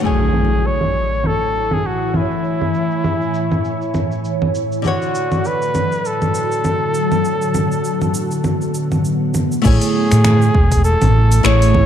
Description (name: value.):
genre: sunset chillout.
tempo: 100 BPM.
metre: 4/4.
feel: swing 57% on 16ths.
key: A major.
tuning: A4 = 440 Hz.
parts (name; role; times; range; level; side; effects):
nylon-string guitar; accompaniment; 0.0-11.9 s; D3 to G#5; -23 LUFS; moving between left 4 dB and right 2 dB; auto-pan.
ethereal airy pad; sustained chords; 0.0-11.9 s; A2 to G#5; -22 LUFS; equal; ensemble chorus, built-in reverb, phaser.
deep house drum kit; drums; 0.0-11.9 s; cabasa, congas, crash cymbal, finger snaps, hi-hat; -22 LUFS; right 1 dB; overdrive, low-pass filter on perc, low-pass filter on hats, low-pass filter on snare, low-pass filter on cymbals, low-pass filter on room.
impact; sound effects; 0.0-2.4 s; none; -21 LUFS; equal; none.
warm flugelhorn; melody; 0.1-11.9 s; E4 to C#5; -20 LUFS; left 1 dB; ping-pong delay.
woody fretless electric bass; bass; 9.6-11.8 s; E1 to A2; -12 LUFS; equal; ensemble chorus.
electronic kick drum; drums; 9.6-11.9 s; none; -16 LUFS; equal; overdrive.
room: moderate lush hall reverb, RT60 2.1 s.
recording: dark, warm production.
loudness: -14 LUFS.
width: side -9 dB against mid.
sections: 0.0-9.6 A section; 9.6-11.9 B section.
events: impact 0.0-2.4; filter sweep on drum 0.0-9.6.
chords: 0.0 Amaj7; 4.8 Dmaj7; 9.6 Amaj7.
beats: | 0.04 0.64 1.24 1.84 | 2.44 3.04 3.64 4.24 | 4.84 5.44 6.04 6.64 | 7.24 7.84 8.44 9.04 | 9.64 10.24 10.84 11.44.